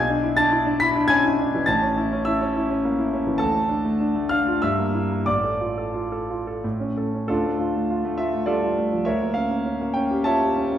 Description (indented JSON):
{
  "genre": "classical, romantic character piece for solo piano",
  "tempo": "87-108 BPM",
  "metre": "3/4",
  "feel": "rubato",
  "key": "D minor",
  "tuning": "A4 = 440 Hz",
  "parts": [
    { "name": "clear concert grand piano", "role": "solo", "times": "0.0-10.8 s", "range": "A1 to B6", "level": "-20 LUFS", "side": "equal", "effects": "none" }
  ],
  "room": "wet recital hall reverb, RT60 1.4 s",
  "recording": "heard from further back in the room",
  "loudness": "-20 LUFS",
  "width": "side -10 dB against mid",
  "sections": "0.0-7.3 A section; 7.3-10.8 B section",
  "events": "none",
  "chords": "0.0 E7/B; 1.7 A; 3.4 Dm; 4.6 Edim/G; 5.3 Dm/A; 6.6 A; 7.3 Dm; 9.1 A7b9/D"
}